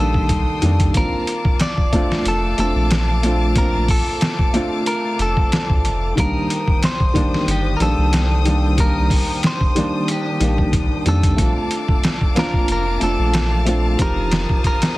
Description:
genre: trip hop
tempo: 92 BPM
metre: 4/4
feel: swing 54% on 16ths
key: unclear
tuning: A4 = 440 Hz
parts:
  - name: clean electric guitar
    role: melody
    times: 0.0-15.0 s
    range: G4 to D5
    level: -24 LUFS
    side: equal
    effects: tape echo
  - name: felt-muted upright piano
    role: accompaniment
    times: 0.0-15.0 s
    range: Eb3 to G4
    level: -22 LUFS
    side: equal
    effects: harmonic tremolo
  - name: clear studio string section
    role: sustained chords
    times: 0.0-15.0 s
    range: C5 to Eb6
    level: -30 LUFS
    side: left 6 dB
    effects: none
  - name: soft dub sub bass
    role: bass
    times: 0.0-14.5 s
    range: F1 to F2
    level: -19 LUFS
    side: equal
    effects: tube saturation
  - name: trip hop sampler-style drum kit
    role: drums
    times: 0.1-15.0 s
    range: hi-hat, kick drum, snare drum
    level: -19 LUFS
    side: equal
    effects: overdrive, studio ambience
  - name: wind-like tuned noise texture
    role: texture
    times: 7.8-15.0 s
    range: D4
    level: -35 LUFS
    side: right 6 dB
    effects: none
room: digital ambience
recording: dense, heavily limited modern master, vinyl crackle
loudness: -16 LUFS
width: side -18 dB against mid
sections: 0.0-15.0 A section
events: none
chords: 0.0 Cm7; 0.9 Bbmaj7; 6.2 Cm7; 11.4 Bbmaj7; 14.0 F7

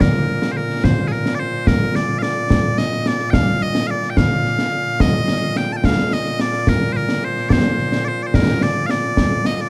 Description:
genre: scottish traditional, Scottish pipe music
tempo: 72 BPM (dotted quarters)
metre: 6/8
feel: straight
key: Bb major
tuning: A4 = 440 Hz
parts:
  - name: loud bright bagpipes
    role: melody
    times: 0.0-9.7 s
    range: Bb2 to A5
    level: -23 LUFS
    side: equal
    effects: none
  - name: concert snare drum and concert bass drum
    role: drums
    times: 0.0-9.7 s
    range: none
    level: -20 LUFS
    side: equal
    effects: none
room: light reverb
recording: dark, warm production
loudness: -18 LUFS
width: mono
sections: 0.0-1.7 A section; 1.7-9.7 B section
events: none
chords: none

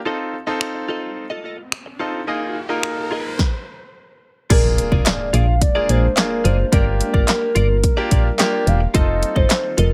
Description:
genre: dance-pop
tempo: 108 BPM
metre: 4/4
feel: straight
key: unclear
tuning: A4 = 440 Hz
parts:
  - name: clear concert grand piano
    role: accompaniment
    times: 0.1-9.7 s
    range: Bb3 to Bb4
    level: -27 LUFS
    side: equal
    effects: sidechain pumping
  - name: direct-recorded clean electric guitar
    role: riff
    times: 0.1-9.9 s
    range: F4 to Eb5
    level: -29 LUFS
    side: equal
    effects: analog chorus
  - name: riser and impact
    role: sound effects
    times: 1.7-6.7 s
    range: none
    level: -34 LUFS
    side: equal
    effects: none
  - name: house drum kit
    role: drums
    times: 0.6-9.9 s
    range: crash cymbal, finger snaps, handclaps, hi-hat, kick drum, snare drum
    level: -20 LUFS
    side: equal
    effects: none
  - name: hollow clarinet-like synth lead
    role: melody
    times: 4.5-9.9 s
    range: Bb4 to F5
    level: -25 LUFS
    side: equal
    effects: chorus
  - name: ethereal airy pad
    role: sustained chords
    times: 5.2-9.9 s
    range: Eb3 to A4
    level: -33 LUFS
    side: equal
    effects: ensemble chorus, built-in reverb, sidechain pumping
  - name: solid FM bass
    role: bass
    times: 4.5-9.9 s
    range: E1 to C2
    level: -20 LUFS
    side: equal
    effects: sidechain pumping
  - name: group handclap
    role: percussion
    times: 5.1-9.6 s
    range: none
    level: -32 LUFS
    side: equal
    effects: none
room: digital ambience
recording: none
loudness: -19 LUFS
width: mono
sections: 0.0-4.5 A section; 4.5-9.9 B section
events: riser 1.7-4.5; stop 3.4-4.5; impact 4.5-6.7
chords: 0.1 F7; 2.3 Bb7sus4; 4.5 Bb7; 6.7 Gm7; 8.9 F7

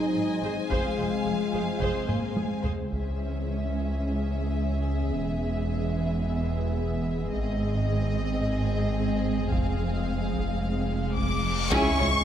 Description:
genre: cinematic, hybrid orchestral and electronic film score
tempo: 109 BPM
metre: 4/4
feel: straight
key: C# minor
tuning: A4 = 439 Hz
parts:
  - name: warm symphonic violin section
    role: second line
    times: 0.0-12.1 s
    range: C#4 to G#5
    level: -37 LUFS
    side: left 2 dB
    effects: none
  - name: glassy FM pad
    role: sustained chords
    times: 0.0-12.2 s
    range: G#3 to F5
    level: -34 LUFS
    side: left 2 dB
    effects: ensemble chorus, built-in reverb
  - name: mellow French horn section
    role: sustained chords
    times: 0.0-12.2 s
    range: E3 to G#4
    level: -34 LUFS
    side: left 2 dB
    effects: none
  - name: dark symphonic cello section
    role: bass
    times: 0.0-12.1 s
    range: C#2 to A#3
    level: -32 LUFS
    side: right 3 dB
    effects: none
  - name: rich symphonic viola section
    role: accompaniment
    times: 0.2-12.1 s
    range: B3 to B#4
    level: -36 LUFS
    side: right 2 dB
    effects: none
  - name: rich symphonic double bass section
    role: bass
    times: 0.2-12.1 s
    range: E1 to C#2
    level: -34 LUFS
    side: right 2 dB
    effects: none
  - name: solo taiko drums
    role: drums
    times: 0.7-4.0, 7.3-12.2 s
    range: none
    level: -32 LUFS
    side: equal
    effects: none
  - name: warm symphonic violin section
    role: melody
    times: 2.9-12.2 s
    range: D#5 to D6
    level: -34 LUFS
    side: left 2 dB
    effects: none
  - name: sub bass with octave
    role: bass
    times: 2.9-12.2 s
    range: E1 to C#2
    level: -32 LUFS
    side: equal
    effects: none
  - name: reverse cymbal and impact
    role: sound effects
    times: 11.1-12.2 s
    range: none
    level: -36 LUFS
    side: left 2 dB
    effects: none
  - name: warm trombone section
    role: sustained chords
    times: 11.7-12.2 s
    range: C#3 to G#3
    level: -35 LUFS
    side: right 4 dB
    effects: none
  - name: warm tuba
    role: bass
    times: 11.7-12.1 s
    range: C#2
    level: -33 LUFS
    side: right 2 dB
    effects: none
room: moderate scoring stage reverb, RT60 1.5 s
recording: none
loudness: -25 LUFS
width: side -10 dB against mid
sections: 0.0-2.9 A section; 2.9-11.7 B section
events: drum fill 2.1-2.9; reverse cymbal 11.1-11.7; impact 11.7-12.2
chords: 0.0 G#; 0.7 Fm; 2.9 C#m; 5.1 E; 7.3 G#; 9.5 Fm; 11.7 C#m

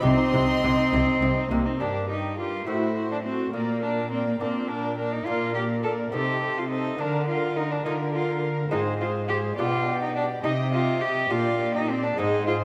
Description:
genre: classical, baroque-style concerto movement with solo episodes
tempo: 69 BPM (dotted quarters)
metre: 6/8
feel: straight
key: unclear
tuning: A4 = 439 Hz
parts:
  - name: rich cello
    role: melody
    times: 0.0-12.5 s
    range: Bb3 to A4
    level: -29 LUFS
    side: equal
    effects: none
  - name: warm chamber violin section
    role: melody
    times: 0.0-12.6 s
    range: D5 to C6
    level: -44 LUFS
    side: equal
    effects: none
  - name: rich chamber violin section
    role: second line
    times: 0.0-12.6 s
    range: Bb4 to Eb5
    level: -36 LUFS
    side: equal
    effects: none
  - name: lute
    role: accompaniment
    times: 0.0-12.6 s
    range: G2 to G4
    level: -34 LUFS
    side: equal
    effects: none
  - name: warm chamber viola section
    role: accompaniment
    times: 0.0-12.6 s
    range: C4 to Bb4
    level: -34 LUFS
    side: equal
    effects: none
  - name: rich chamber double bass section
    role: bass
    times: 0.0-1.6 s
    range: C2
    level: -32 LUFS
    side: equal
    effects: none
  - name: warm chamber cello section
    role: bass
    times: 0.0-12.6 s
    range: G2 to D3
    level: -32 LUFS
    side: equal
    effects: none
room: wet recital hall reverb, RT60 1.5 s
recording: none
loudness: -25 LUFS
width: mono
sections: 0.0-1.8 A section; 1.8-12.6 B section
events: none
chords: 0.0 Cm; 1.8 Gm; 2.7 F#dim/A; 3.5 Gm/Bb; 6.1 Adim/C; 7.0 Bb/D; 8.7 Fm/Ab; 9.6 G7/B; 10.4 Cm; 11.3 Gm/Bb

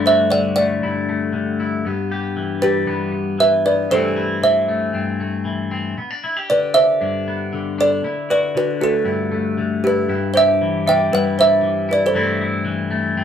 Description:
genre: highlife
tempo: 116 BPM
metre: 4/4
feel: straight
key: G major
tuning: A4 = 439 Hz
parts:
  - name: kalimba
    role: melody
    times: 0.0-12.5 s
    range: F#4 to G5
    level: -17 LUFS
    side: right 2 dB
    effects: none
  - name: clean electric guitar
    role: accompaniment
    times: 0.0-13.2 s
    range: G2 to G4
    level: -21 LUFS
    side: left 4 dB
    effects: phaser
room: wet studio ambience, RT60 0.5 s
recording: band playing live in one room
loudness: -16 LUFS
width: side -8 dB against mid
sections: 0.0-6.0 A section; 6.0-13.2 A section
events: none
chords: 0.0 Dadd9/G; 1.8 Em/G; 3.9 Am/G; 6.0 G; 8.0 Dadd9; 10.1 Em/G; 12.1 Am/G

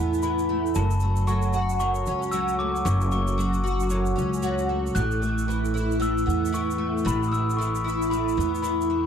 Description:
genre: acoustic pop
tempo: 114 BPM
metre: 4/4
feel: swing 60% on 16ths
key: A major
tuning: A4 = 440 Hz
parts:
  - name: glockenspiel with rubber mallets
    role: second line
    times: 0.0-9.1 s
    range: A5 to F#6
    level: -30 LUFS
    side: left 4 dB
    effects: none
  - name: picked twelve-string acoustic guitar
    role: accompaniment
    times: 0.0-9.1 s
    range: F#2 to F#4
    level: -26 LUFS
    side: right 1 dB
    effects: ensemble chorus
  - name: upright bass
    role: bass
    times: 0.0-9.1 s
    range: F#1 to E2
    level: -26 LUFS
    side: equal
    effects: none
  - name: tube shaker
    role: percussion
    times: 0.1-8.9 s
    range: none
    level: -42 LUFS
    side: right 14 dB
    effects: none
room: little or no reverb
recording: dry, close 1970s-style studio recording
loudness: -22 LUFS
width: side -8 dB against mid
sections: 0.0-9.1 A section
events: none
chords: 0.0 Asus2; 0.8 F#m; 5.0 Asus2

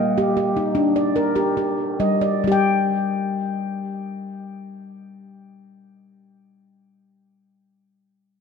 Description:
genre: world meditative, meditative tuned percussion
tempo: 134-160 BPM (eighths)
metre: 7/8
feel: straight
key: G minor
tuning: A4 = 440 Hz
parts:
  - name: handpan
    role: solo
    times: 0.0-6.5 s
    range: G3 to G5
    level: -20 LUFS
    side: left 1 dB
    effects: diffuse ambient delay
room: wet recital hall reverb, RT60 1.7 s, small room ambience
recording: none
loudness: -19 LUFS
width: side -6 dB against mid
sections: 0.0-2.4 A section; 2.4-5.6 B section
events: slowing down 0.0-2.4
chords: 0.0 Gm; 2.4 G5

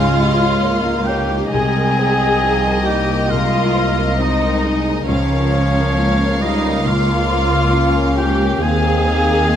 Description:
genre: cinematic, emotional film score for orchestra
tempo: 68 BPM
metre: 4/4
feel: rubato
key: unclear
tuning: A4 = 438 Hz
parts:
  - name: rich studio violin section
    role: melody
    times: 0.0-9.6 s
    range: Eb5 to F5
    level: -25 LUFS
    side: left 1 dB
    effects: none
  - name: dark studio violin section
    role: second line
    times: 0.0-9.6 s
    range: Bb4 to F5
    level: -28 LUFS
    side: left 2 dB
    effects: none
  - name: mellow clarinet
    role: second line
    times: 0.0-9.6 s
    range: F3 to C4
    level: -26 LUFS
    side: left 1 dB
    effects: none
  - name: mellow hollow silver concert flute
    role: second line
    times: 0.0-9.6 s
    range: Db5 to Ab5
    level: -26 LUFS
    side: left 1 dB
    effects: none
  - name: warm oboe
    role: second line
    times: 0.0-9.6 s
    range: Db5 to Ab5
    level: -24 LUFS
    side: equal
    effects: none
  - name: dark baby grand piano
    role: accompaniment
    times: 0.0-9.6 s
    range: C2 to Eb5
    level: -24 LUFS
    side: left 1 dB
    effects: none
  - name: dark symphonic viola section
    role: accompaniment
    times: 0.0-9.6 s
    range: Db4 to Ab4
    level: -20 LUFS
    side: equal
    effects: none
  - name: clear French horn section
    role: sustained chords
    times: 0.0-9.6 s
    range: F3 to Db4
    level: -25 LUFS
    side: left 4 dB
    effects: none
  - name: warm studio cello section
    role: bass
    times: 0.0-9.6 s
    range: C2 to Eb2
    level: -21 LUFS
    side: equal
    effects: none
  - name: warm studio double bass section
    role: bass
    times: 0.0-9.6 s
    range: C2 to Eb2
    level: -22 LUFS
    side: right 2 dB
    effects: none
room: light reverb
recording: none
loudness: -14 LUFS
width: side -9 dB against mid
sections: 0.0-9.6 A section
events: none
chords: 0.0 Dbadd9; 1.5 Abadd9/C; 5.1 Bbm/Db; 8.6 Ebsus2

